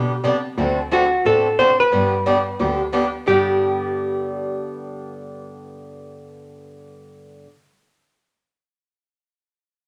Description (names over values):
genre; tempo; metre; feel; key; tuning
country, western swing; 179 BPM; 4/4; swing 62% on 8ths; G major; A4 = 435 Hz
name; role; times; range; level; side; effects
hollow-body jazz guitar; melody; 0.0-7.4 s; F#4 to C5; -20 LUFS; equal; none
picked swing-style acoustic guitar; accompaniment; 0.0-7.5 s; G2 to A4; -25 LUFS; equal; none
warm cello; bass; 0.0-6.7 s; D2 to C3; -29 LUFS; equal; none
room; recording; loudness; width
moderate large studio reverb, RT60 0.9 s; none; -19 LUFS; mono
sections
0.6-3.3 A section; 3.3-6.0 B section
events
none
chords
0.0 G; 0.6 D7; 1.9 G